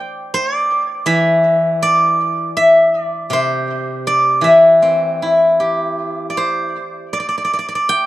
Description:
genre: chinese traditional, Chinese solo plucked strings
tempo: 79 BPM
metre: 4/4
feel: rubato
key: unclear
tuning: A4 = 440 Hz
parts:
  - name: steel-string zither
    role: solo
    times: 0.0-8.1 s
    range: C3 to G5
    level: -13 LUFS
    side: equal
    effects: tape echo
room: little or no reverb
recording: dry, close 1970s-style studio recording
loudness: -12 LUFS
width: side -15 dB against mid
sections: 0.0-8.1 A section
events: none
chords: none

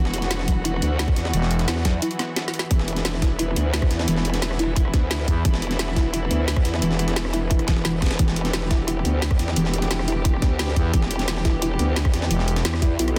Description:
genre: dark technical drum and bass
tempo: 175 BPM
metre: 4/4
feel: straight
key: E minor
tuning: A4 = 441 Hz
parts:
  - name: warm chamber string section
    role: sustained chords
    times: 0.0-13.2 s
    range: E3 to G4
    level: -33 LUFS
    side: equal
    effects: sidechain pumping
  - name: soft round pluck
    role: arpeggios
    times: 0.0-13.2 s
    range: E3 to E4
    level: -31 LUFS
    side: equal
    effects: analog chorus, sidechain pumping, delay
  - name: growl bass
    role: bass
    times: 0.0-13.2 s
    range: E1 to E2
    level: -27 LUFS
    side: equal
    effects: chorus, tube saturation, sidechain pumping
  - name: breakbeat sampler-style drum kit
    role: drums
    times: 0.1-13.2 s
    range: hi-hat, snare drum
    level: -34 LUFS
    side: equal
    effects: high-pass filter on hats, high-pass filter on snare
  - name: drum and bass drum kit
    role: drums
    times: 0.1-13.2 s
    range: hi-hat, rim click, snare drum, toms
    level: -31 LUFS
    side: equal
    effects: none
  - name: electronic kick drum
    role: drums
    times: 0.5-12.9 s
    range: none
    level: -22 LUFS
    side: equal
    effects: none
  - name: growling FM bass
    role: bass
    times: 1.3-1.7, 5.3-5.4, 10.8-12.6 s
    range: E1 to E2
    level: -24 LUFS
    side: equal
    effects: tube saturation
room: light reverb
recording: dense, heavily limited modern master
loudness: -22 LUFS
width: mono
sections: 0.0-13.2 A section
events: filter sweep on synth pluck 0.0-13.2; break 2.0-2.7; drum fill 2.4-2.7; kick drops out 13.0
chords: 0.0 E5

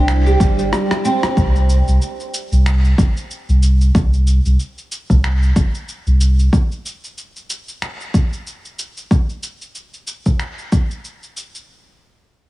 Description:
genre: organic downtempo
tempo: 93 BPM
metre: 4/4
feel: swing 57% on 16ths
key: C major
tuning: A4 = 440 Hz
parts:
  - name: oud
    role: arpeggios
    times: 0.0-1.4 s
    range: G3 to G4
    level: -20 LUFS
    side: right 2 dB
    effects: tape echo
  - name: warm sub bass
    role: bass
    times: 0.0-6.5 s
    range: G1 to C2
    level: -13 LUFS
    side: equal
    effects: none
  - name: electronic finger snaps, shaker and rim click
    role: drums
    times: 0.1-11.7 s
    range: none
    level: -26 LUFS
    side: equal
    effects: none
  - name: electronic kick drum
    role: drums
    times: 0.4-10.9 s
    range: none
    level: -15 LUFS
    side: equal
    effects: overdrive
room: little or no reverb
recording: heavily compressed radio sound, small room ambience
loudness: -14 LUFS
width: side -18 dB against mid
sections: 0.0-1.4 A section; 1.4-11.7 B section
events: break 0.7-1.4; drum fill 0.7-1.4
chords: 0.0 C/G; 1.4 C5; 11.7 N.C.

